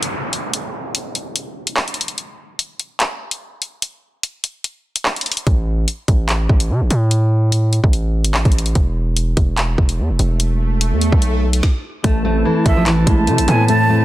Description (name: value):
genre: hip hop, drill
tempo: 146 BPM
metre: 4/4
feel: half-time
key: A harmonic minor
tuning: A4 = 440 Hz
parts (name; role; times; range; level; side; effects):
- drill drum kit; drums; 0.0-13.8 s; handclaps, hi-hat, kick drum, snare drum; -17 LUFS; equal; vintage 12-bit sampler grit
- downlifter and swell; sound effects; 0.0-2.2, 10.1-11.6 s; none; -26 LUFS; right 2 dB; none
- distorted 808-style bass; bass; 5.5-14.0 s; E1 to C3; -16 LUFS; equal; distortion
- nylon-string guitar; melody; 12.0-14.0 s; E3 to B3; -18 LUFS; equal; low-pass filter, tape echo
- clean electric guitar; accompaniment; 12.0-14.0 s; A3 to A5; -21 LUFS; left 4 dB; ensemble chorus, low-pass filter
- mellow woodwind section; sustained chords; 12.0-14.0 s; E4 to A5; -24 LUFS; right 2 dB; none
- jazz flute; second line; 12.7-14.0 s; E5 to A5; -20 LUFS; right 4 dB; none
room: studio reverb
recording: dense, heavily limited modern master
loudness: -15 LUFS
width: side -15 dB against mid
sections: 0.0-12.0 A section; 12.0-14.0 B section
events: break 0.0-5.5; swell 10.1-12.0; stop 11.6-12.0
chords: 0.0 N.C.; 8.8 E5; 12.0 Am